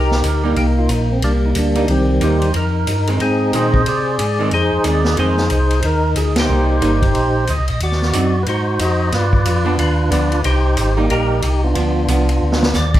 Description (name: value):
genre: soul jazz organ trio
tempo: 182 BPM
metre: 4/4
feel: swing 62% on 8ths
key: C minor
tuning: A4 = 441 Hz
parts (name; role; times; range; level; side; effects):
- percussive tonewheel organ; melody; 0.0-13.0 s; Eb3 to Eb5; -18 LUFS; equal; slow rotary speaker, overdrive
- mellow tonewheel organ; bass; 0.0-13.0 s; G1 to C3; -18 LUFS; equal; chorus vibrato, slow rotary speaker
- vintage drum kit; drums; 0.1-13.0 s; crash cymbal, hi-hat, kick drum, ride cymbal, snare drum; -23 LUFS; equal; none
- archtop guitar, miked and amplified; accompaniment; 0.4-12.3 s; Eb3 to Eb4; -22 LUFS; right 3 dB; none
room: moderate large studio reverb, RT60 0.9 s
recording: band playing live in one room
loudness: -14 LUFS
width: side -13 dB against mid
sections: 0.0-13.0 A section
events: band accent 6.3; drum fill 12.4-12.7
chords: 0.0 Cm7; 2.5 Fm7; 6.5 Cm7; 7.8 Ab7; 9.1 G7; 10.4 Cm7; 11.8 Bdim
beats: 0.23 0.56 0.89 | 1.22 1.55 1.88 2.21 | 2.54 2.87 3.20 3.53 | 3.86 4.19 4.52 4.84 | 5.17 5.50 5.83 6.16 | 6.49 6.82 7.15 7.48 | 7.81 8.14 8.47 8.79 | 9.12 9.45 9.78 10.11 | 10.44 10.77 11.10 11.43 | 11.76 12.08 12.41 12.74